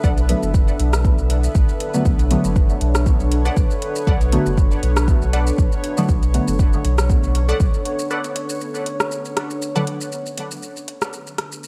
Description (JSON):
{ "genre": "dub techno", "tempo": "119 BPM", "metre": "4/4", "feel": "swing 55% on 16ths", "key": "B minor", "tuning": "A4 = 439 Hz", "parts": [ { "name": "deep dark ambient pad", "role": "sustained chords", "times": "0.0-11.7 s", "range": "D4 to E5", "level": "-29 LUFS", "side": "equal", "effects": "chorus, built-in reverb, sidechain pumping" }, { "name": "filtered dub chord stab", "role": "riff", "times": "0.0-0.1, 3.5-9.8 s", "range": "A4 to F#5", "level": "-32 LUFS", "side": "equal", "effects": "phaser, sidechain pumping, dub echo" }, { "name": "warm sub bass", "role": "bass", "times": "0.0-7.7 s", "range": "F#1 to B1", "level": "-22 LUFS", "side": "equal", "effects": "sidechain pumping" }, { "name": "deep house drum kit", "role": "drums", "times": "0.0-11.7 s", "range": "hi-hat, rim click, shaker", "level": "-29 LUFS", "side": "equal", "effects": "studio reverb" }, { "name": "electronic kick drum", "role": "drums", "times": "0.0-7.7 s", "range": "none", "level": "-20 LUFS", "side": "equal", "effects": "studio reverb" }, { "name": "bubbling stepped-filter texture", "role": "texture", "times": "0.0-10.1 s", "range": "B3 to C#5", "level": "-35 LUFS", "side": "equal", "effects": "chorus, built-in reverb, sidechain pumping" }, { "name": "deep mellow chord stab", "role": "stabs", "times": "0.3-6.5, 9.8-10.5 s", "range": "D3 to B3", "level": "-26 LUFS", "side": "equal", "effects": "chorus, phaser, sidechain pumping, dub echo" } ], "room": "light reverb", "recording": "echo-heavy mix", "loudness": "-19 LUFS", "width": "mono", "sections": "0.0-10.1 A section; 10.1-11.7 B section", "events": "break 8.1-10.1; filter sweep on synth stab 10.1-11.7", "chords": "0.0 Bm7", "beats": "| 0.04 0.54 1.05 1.55 | 2.06 2.56 3.06 3.57 | 4.07 4.58 5.08 5.58 | 6.09 6.59 7.10 7.60 | 8.11 8.61 9.11 9.62 | 10.12 10.63 11.13 11.63" }